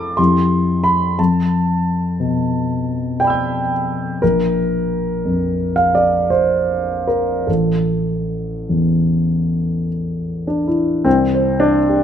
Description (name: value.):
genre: classical, impressionist solo piano.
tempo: 49-61 BPM.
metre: 3/4.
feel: rubato.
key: A minor.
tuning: A4 = 444 Hz.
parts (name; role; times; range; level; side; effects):
clear grand piano; solo; 0.0-12.0 s; A1 to A6; -15 LUFS; equal; none.
room: moderate recital hall reverb, RT60 1.4 s.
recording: close, detailed microphones.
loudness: -15 LUFS.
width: side -9 dB against mid.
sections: 0.0-11.1 A section.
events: none.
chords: 0.2 C/F; 1.2 G69/F; 4.2 Bb5; 7.5 A5; 11.1 Csus2.